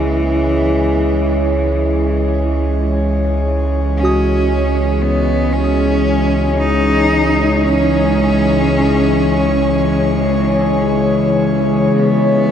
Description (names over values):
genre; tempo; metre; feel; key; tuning
ambient; free time; none; none; C# minor; A4 = 440 Hz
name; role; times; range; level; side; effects
rich cello; melody; 0.0-12.5 s; E3 to D#4; -19 LUFS; right 1 dB; tape echo
airy breathy pad; sustained chords; 0.0-12.5 s; C#3 to C#5; -16 LUFS; left 1 dB; chorus
warm sub bass; bass; 0.0-12.5 s; C#2; -19 LUFS; equal; none
pedal harmonium; drone; 0.0-12.1 s; C#3 to G#3; -22 LUFS; left 1 dB; none
soft synth bell; arpeggios; 4.0-12.0 s; F#4 to D#6; -24 LUFS; right 1 dB; chorus, tape echo
room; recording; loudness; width
wet huge ambient reverb, RT60 8.8 s; dreamy mix soaked in reverb; -12 LUFS; side -8 dB against mid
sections
0.0-12.0 A section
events
fade-in on analog synth pad 0.0-12.0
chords
0.0 C#m; 12.0 C#m7